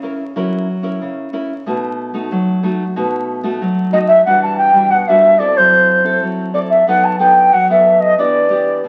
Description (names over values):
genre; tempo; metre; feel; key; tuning
samba; 92 BPM; 4/4; straight; E minor; A4 = 440 Hz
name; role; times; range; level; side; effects
nylon-string guitar; accompaniment; 0.0-8.9 s; B2 to A#4; -21 LUFS; equal; none
bansuri; melody; 3.9-8.8 s; C5 to A5; -12 LUFS; equal; none
room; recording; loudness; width
wet studio reverb, RT60 0.8 s; very old 78 rpm record, vinyl crackle; -14 LUFS; mono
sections
0.0-4.3 A section; 4.3-8.9 B section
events
none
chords
0.0 F#7; 1.7 B7; 4.3 Em9; 5.6 F#m7b5; 6.9 B7/F#; 8.2 Em7